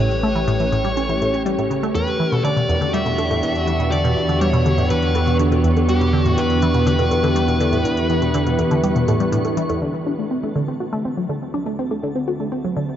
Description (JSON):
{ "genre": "ambient, sequencer-driven space music", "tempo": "122 BPM", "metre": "4/4", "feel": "straight", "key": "E dorian", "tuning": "A4 = 435 Hz", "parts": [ { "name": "dark smooth lead guitar", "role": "melody", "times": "0.0-9.3 s", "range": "G4 to E5", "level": "-24 LUFS", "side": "equal", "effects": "overdrive, analog delay" }, { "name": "evolving wavetable pad", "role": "sustained chords", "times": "0.0-13.0 s", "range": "D2 to G4", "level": "-22 LUFS", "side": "equal", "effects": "chorus, built-in reverb" }, { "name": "resonant blip pluck", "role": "riff", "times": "0.0-12.9 s", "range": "E2 to F#4", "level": "-21 LUFS", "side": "equal", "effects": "phaser, analog delay" }, { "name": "round analog bass", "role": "bass", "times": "0.0-9.8 s", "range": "A1 to E2", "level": "-23 LUFS", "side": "equal", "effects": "none" }, { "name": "twinkling granular texture", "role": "texture", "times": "0.0-13.0 s", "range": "A5 to C#6", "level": "-35 LUFS", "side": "right 1 dB", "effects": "built-in reverb" }, { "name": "electronic hi-hat and bongos", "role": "percussion", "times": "0.1-9.8 s", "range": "none", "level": "-34 LUFS", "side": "equal", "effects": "analog delay" } ], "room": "wet huge ambient reverb, RT60 7.3 s", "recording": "dark, warm production, nothing above 7.5 kHz", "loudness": "-17 LUFS", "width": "side -10 dB against mid", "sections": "0.0-9.8 A section; 9.8-13.0 B section", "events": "fade-in on synth texture 0.0-9.8; fade-in on drum 0.0-9.8", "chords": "0.0 A7; 2.0 Em7; 9.8 D7", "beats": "0.48 0.97 1.46 | 1.95 2.44 2.94 3.43 | 3.92 4.41 4.90 5.39 | 5.89 6.38 6.87 7.36 | 7.85 8.35 8.84 9.33 | 9.82 10.31 10.80 11.29 | 11.79 12.28 12.77" }